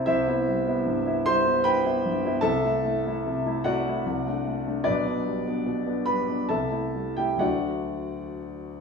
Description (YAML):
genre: classical, romantic character piece for solo piano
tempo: 62-78 BPM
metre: 3/4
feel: rubato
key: G major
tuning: A4 = 440 Hz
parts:
  - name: warm concert grand piano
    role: solo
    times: 0.0-8.8 s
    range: B1 to C6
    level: -23 LUFS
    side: equal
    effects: none
room: wet recital hall reverb, RT60 1.6 s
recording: studio ambience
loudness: -23 LUFS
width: side -5 dB against mid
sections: 0.0-8.8 A section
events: none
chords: 0.1 Cmaj7; 2.4 Am/C; 4.0 D7/C; 4.9 G/B; 6.5 Am7/C; 7.4 D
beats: | 0.07 0.88 1.67 | 2.44 3.24 4.04 | 4.85 5.65 6.49 | 7.42 8.39